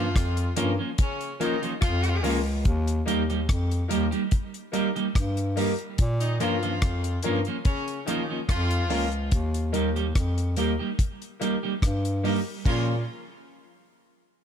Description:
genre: roots reggae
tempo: 72 BPM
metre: 4/4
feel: straight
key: Bb dorian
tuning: A4 = 441 Hz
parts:
  - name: warm horn section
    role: second line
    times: 0.0-13.0 s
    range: Db3 to F4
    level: -32 LUFS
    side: left 1 dB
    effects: tape echo
  - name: clean electric guitar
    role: accompaniment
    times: 0.0-12.9 s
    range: F3 to G4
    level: -30 LUFS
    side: right 4 dB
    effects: tape echo
  - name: mellow bass clarinet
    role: bass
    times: 0.0-13.0 s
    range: Db2 to Bb2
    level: -26 LUFS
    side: equal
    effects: none
  - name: deep reggae drum kit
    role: drums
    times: 0.2-12.9 s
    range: crash cymbal, hi-hat, kick drum, rim click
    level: -26 LUFS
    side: equal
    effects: none
  - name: clear upright piano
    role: stabs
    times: 0.6-13.0 s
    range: Bb3 to Bb4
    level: -34 LUFS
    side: left 4 dB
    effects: none
room: little or no reverb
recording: none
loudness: -23 LUFS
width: side -8 dB against mid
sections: 0.0-12.7 A section; 12.7-14.4 B section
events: none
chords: 0.0 Bbm; 2.7 Eb; 6.0 Bbm; 9.3 Eb; 12.7 Bbm

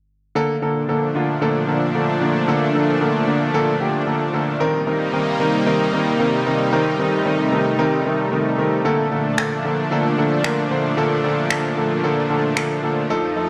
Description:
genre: dance-pop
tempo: 113 BPM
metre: 4/4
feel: straight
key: Bb major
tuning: A4 = 440 Hz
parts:
  - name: clear grand piano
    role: accompaniment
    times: 0.4-13.5 s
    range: D3 to C5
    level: -22 LUFS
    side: equal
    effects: none
  - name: supersaw pad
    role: sustained chords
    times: 0.4-13.5 s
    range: F2 to Eb4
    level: -23 LUFS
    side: equal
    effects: none
  - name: electronic finger snaps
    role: drums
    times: 9.4-12.7 s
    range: none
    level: -27 LUFS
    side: equal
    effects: none
room: moderate echo chamber reverb, RT60 1.5 s, small room ambience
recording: faint mains hum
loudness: -20 LUFS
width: mono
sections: 0.4-13.5 A section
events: none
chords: 0.4 Bbmaj7; 4.6 Cm7; 8.9 Bbmaj7

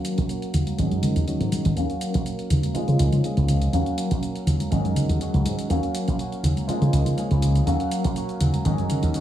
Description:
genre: filtered disco house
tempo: 122 BPM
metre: 4/4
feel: straight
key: Eb minor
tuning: A4 = 441 Hz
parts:
  - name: clear grand piano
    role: accompaniment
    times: 0.0-9.2 s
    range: Gb3 to F5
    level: -28 LUFS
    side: equal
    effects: phaser, low-pass filter
  - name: direct-recorded clean electric guitar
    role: riff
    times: 0.0-9.2 s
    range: Eb3 to Ab4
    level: -31 LUFS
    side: right 2 dB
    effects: wide subtle chorus, low-pass filter
  - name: electronic hi-hat and cabasa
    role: drums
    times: 0.0-9.2 s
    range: none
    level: -37 LUFS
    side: equal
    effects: none
  - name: slap bass with an envelope filter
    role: bass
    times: 0.2-9.1 s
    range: Ab1 to Db3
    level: -22 LUFS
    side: equal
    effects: low-pass filter
  - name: tambourine and congas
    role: percussion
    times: 0.2-9.2 s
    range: none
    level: -27 LUFS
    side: left 1 dB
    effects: low-pass filter on perc
room: light reverb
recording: studio reverb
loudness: -20 LUFS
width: side -12 dB against mid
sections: 0.0-9.2 A section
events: filter sweep 0.0-9.2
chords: 0.0 Ebm7 (rootless); 0.8 Ab7sus4; 1.8 Ebm7; 2.8 Db6; 3.7 Ebm7; 4.7 Ab7sus4; 5.7 Ebm7; 6.7 Db6; 7.7 Ebm7; 8.7 Ab7sus4

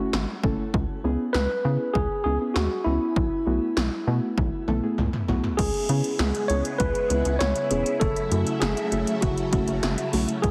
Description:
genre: synth-pop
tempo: 99 BPM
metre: 4/4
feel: straight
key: C# minor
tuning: A4 = 440 Hz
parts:
  - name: tine electric piano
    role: melody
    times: 0.0-10.5 s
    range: E4 to C#5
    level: -30 LUFS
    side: equal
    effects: delay, shimmer reverb
  - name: muted felt-like synth keys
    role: accompaniment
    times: 0.0-10.3 s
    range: A3 to B4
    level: -32 LUFS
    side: equal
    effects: chorus, shimmer reverb
  - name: rubbery square bass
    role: bass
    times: 0.1-10.5 s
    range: E1 to C#3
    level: -29 LUFS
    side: equal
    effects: none
  - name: 80s electronic pad drums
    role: drums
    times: 0.1-10.5 s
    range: crash cymbal, hi-hat, kick drum, snare drum, toms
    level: -30 LUFS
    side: equal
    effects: gated reverb on snare and toms
  - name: phased string machine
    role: sustained chords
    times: 5.6-10.5 s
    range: C#3 to E4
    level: -33 LUFS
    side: equal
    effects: ensemble chorus, phaser, shimmer reverb
room: moderate lush hall reverb, RT60 2.4 s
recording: heavily compressed radio sound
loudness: -25 LUFS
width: mono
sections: 0.0-5.6 A section; 5.6-10.5 B section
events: drum fill 4.4-5.6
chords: 0.0 F#m7; 0.7 C#m7; 3.2 B7sus4; 5.6 C#m7; 8.0 F#m7

